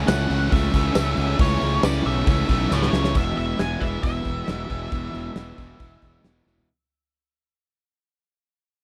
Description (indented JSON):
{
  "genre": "classic rock",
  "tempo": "136 BPM",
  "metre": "4/4",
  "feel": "straight",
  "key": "E major",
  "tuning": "A4 = 440 Hz",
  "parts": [
    { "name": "biting overdriven guitar", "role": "riff", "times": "0.0-3.1 s", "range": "C#3 to C#4", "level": "-34 LUFS", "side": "equal", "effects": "none" },
    { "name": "distorted electric guitar", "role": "riff", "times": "0.0-6.7 s", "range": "C#3 to E4", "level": "-33 LUFS", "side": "equal", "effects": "distortion" },
    { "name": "distorted electric guitar", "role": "riff", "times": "0.0-6.7 s", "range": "E2 to C#4", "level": "-33 LUFS", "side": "equal", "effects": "overdrive" },
    { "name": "fuzz fingered electric bass", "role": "bass", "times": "0.0-6.6 s", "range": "E1 to C#2", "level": "-27 LUFS", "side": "equal", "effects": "overdrive" },
    { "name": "octave-fuzz lead guitar", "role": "melody", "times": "0.1-6.2 s", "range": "C#5 to G#5", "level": "-31 LUFS", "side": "equal", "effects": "distortion" },
    { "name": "big rock drum kit", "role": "drums", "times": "0.1-6.7 s", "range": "crash cymbal, hi-hat, kick drum, snare drum, toms", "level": "-26 LUFS", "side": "equal", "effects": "none" },
    { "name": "tambourine", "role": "percussion", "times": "0.1-2.8 s", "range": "none", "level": "-43 LUFS", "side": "equal", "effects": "none" }
  ],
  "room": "little or no reverb",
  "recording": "dry, close 1970s-style studio recording",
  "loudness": "-22 LUFS",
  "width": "mono",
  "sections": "0.0-3.1 A section; 3.1-6.7 B section",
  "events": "drum fill 2.7-3.1, 6.5; fade-out 3.1-6.7",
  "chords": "0.0 A/C#; 3.1 E"
}